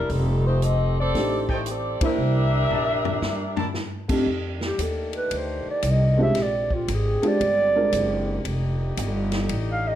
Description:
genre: jazz, big band swing.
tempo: 115 BPM.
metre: 4/4.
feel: swing 66% on 8ths.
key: F mixolydian.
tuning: A4 = 440 Hz.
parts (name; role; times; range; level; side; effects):
warm saxophone section; melody; 0.0-3.7 s; G3 to E5; -25 LUFS; left 1 dB; none.
upright bass; bass; 0.0-10.0 s; F1 to G2; -25 LUFS; equal; none.
swinging big-band drum kit; drums; 0.1-9.7 s; crash cymbal, hi-hat, kick drum, ride cymbal, snare drum, toms; -31 LUFS; left 1 dB; none.
dark upright piano; accompaniment; 1.1-8.4 s; F2 to C5; -25 LUFS; right 1 dB; none.
clear trumpet section; stabs; 1.5-3.7 s; Eb4 to A5; -34 LUFS; right 3 dB; none.
bright trombone section; sustained chords; 4.3-10.0 s; D3 to G4; -34 LUFS; left 1 dB; none.
breathy clarinet; melody; 4.6-10.0 s; F4 to F5; -24 LUFS; right 2 dB; none.
room: moderate large studio reverb, RT60 1.1 s.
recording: none.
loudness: -21 LUFS.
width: side -11 dB against mid.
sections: 0.0-4.3 A section; 4.3-10.0 B section.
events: band accent 1.9; drum fill 2.7-3.8; clarinet solo 4.3-10.0.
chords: 0.1 F13; 2.2 C13; 4.3 F13; 6.4 Bb13; 8.5 F13.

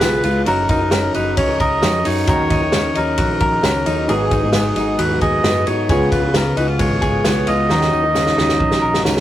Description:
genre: jangly indie pop.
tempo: 133 BPM.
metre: 4/4.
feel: straight.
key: Eb minor.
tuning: A4 = 441 Hz.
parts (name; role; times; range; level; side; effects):
melodica; melody; 0.0-9.0 s; Ab4 to Eb5; -21 LUFS; right 1 dB; none.
fingerpicked steel-string acoustic guitar; accompaniment; 0.0-9.2 s; Ab2 to Bb4; -22 LUFS; right 1 dB; none.
direct-recorded clean electric guitar; arpeggios; 0.0-9.2 s; Ab2 to Bb4; -19 LUFS; left 1 dB; none.
vintage muted fingered electric bass; bass; 0.0-9.2 s; Gb1 to Ab2; -25 LUFS; equal; none.
vintage drum kit; drums; 0.0-9.2 s; hi-hat, kick drum, ride cymbal, snare drum; -20 LUFS; equal; none.
tambourine; percussion; 0.0-9.2 s; none; -39 LUFS; right 5 dB; none.
room: moderate booth ambience, RT60 0.2 s.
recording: rough rehearsal-room recording.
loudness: -14 LUFS.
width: side -12 dB against mid.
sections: 0.0-9.2 A section.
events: drum fill 7.7-9.2.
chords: 0.5 Gb6; 2.3 Ebm7; 4.1 Abm7; 5.9 Db7; 7.7 Ebm7.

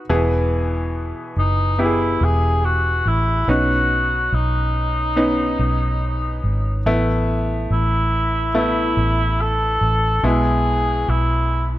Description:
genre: pop.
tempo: 71 BPM.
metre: 4/4.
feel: straight.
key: E major.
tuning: A4 = 439 Hz.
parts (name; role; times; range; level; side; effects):
bright grand piano; accompaniment; 0.0-11.8 s; B2 to G#4; -23 LUFS; equal; none.
vintage muted fingered electric bass; bass; 0.1-11.8 s; E1 to B1; -20 LUFS; equal; none.
warm cor anglais; melody; 1.4-11.7 s; D#4 to A4; -21 LUFS; equal; none.
room: light reverb, studio ambience.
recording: none.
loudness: -17 LUFS.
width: side -15 dB against mid.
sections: 0.0-11.8 A section.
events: none.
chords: 0.1 E; 3.5 Badd9; 6.9 Asus2; 10.2 E/B.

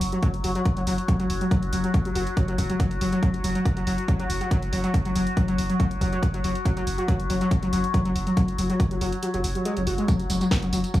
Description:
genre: driving peak-time techno.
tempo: 140 BPM.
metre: 4/4.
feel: straight.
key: unclear.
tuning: A4 = 438 Hz.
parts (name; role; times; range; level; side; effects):
saturated sub bass; bass; 0.0-10.8 s; F#1; -30 LUFS; equal; overdrive, sidechain pumping, low-pass filter.
overtone-sweeping drone; drone; 0.0-11.0 s; F#3 to F#4; -32 LUFS; left 2 dB; chorus, built-in reverb, sidechain pumping.
techno drum kit; drums; 0.0-11.0 s; hi-hat, snare drum, tambourine; -35 LUFS; right 1 dB; none.
overdriven synth lead; riff; 0.1-11.0 s; F#3 to F#4; -26 LUFS; left 1 dB; distortion, tube saturation, lush chorus, sidechain pumping, tape echo.
electronic kick drum; drums; 0.2-11.0 s; none; -24 LUFS; equal; overdrive.
room: light reverb, digital ambience.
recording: dry, gritty hardware recording, small room ambience.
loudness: -22 LUFS.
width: side -15 dB against mid.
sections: 0.0-11.0 A section.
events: break 9.2-10.1.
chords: none.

